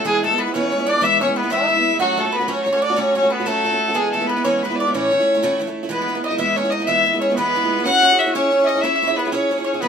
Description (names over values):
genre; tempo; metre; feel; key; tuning
celtic folk, Celtic jig; 123 BPM (dotted quarters); 6/8; straight; A major, E major from 5.9 s; A4 = 439 Hz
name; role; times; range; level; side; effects
rich fiddle; melody; 0.0-9.9 s; F#4 to F#5; -18 LUFS; left 1 dB; none
mandolin; second line; 0.0-9.9 s; F#4 to F#5; -26 LUFS; right 4 dB; none
warm tenor saxophone; second line; 0.0-9.9 s; F#3 to F#4; -25 LUFS; left 3 dB; none
picked steel-string acoustic guitar; accompaniment; 0.0-9.9 s; A2 to C#5; -23 LUFS; right 4 dB; none
room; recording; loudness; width
moderate studio reverb, RT60 0.6 s; minimal, uncompressed stereo recording; -16 LUFS; side -7 dB against mid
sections
0.0-5.9 A section; 5.9-9.9 B section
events
none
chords
0.1 E; 2.0 F#m; 4.0 E; 4.9 A; 5.9 E; 7.9 C#m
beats
| 0.05 0.54 | 1.03 1.52 | 2.01 2.50 | 2.98 3.47 | 3.96 4.45 | 4.94 5.42 | 5.91 6.40 | 6.89 7.38 | 7.86 8.35 | 8.84 9.32 | 9.81